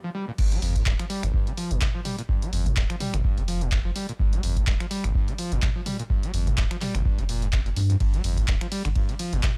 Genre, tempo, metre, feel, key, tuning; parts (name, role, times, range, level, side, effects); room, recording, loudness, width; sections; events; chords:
acid house; 126 BPM; 4/4; swing 56% on 16ths; G minor pentatonic; A4 = 440 Hz
overdriven acid bass; riff; 0.0-9.5 s; G1 to G3; -34 LUFS; equal; distortion, lush chorus, vintage 12-bit sampler grit, sidechain pumping, tape echo
warm sub bass; bass; 0.4-9.4 s; D1 to G2; -28 LUFS; equal; sidechain pumping
electronic kick drum; drums; 0.4-9.5 s; -27 LUFS; equal
punchy analog drum machine; drums; 0.4-9.5 s; crash cymbal, finger snaps, handclaps, hi-hat, ride cymbal, toms; -34 LUFS; equal
little or no reverb; dry, gritty hardware recording, transformer saturation; -25 LUFS; mono
0.4-9.6 A section
break 0.0-0.4; drop 0.4-9.6